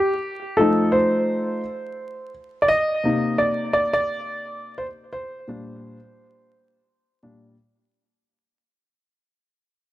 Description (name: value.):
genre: hip hop.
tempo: 86 BPM.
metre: 4/4.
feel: swing 58% on 16ths.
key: unclear.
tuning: A4 = 437 Hz.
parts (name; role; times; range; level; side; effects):
warm grand piano; solo; 0.0-7.5 s; Bb2 to Eb5; -20 LUFS; equal; tape echo.
room: moderate studio reverb, RT60 0.6 s.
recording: dark, warm production, vinyl crackle.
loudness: -19 LUFS.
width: side -14 dB against mid.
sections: 0.0-8.3 A section.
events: fade-out 0.0-8.3; grand piano solo 0.0-8.3.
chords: 0.0 F9; 2.7 Cm9; 5.5 Bb69.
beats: 0.59 1.29 1.99 | 2.68 3.38 4.08 4.78 | 5.47 6.17 6.87.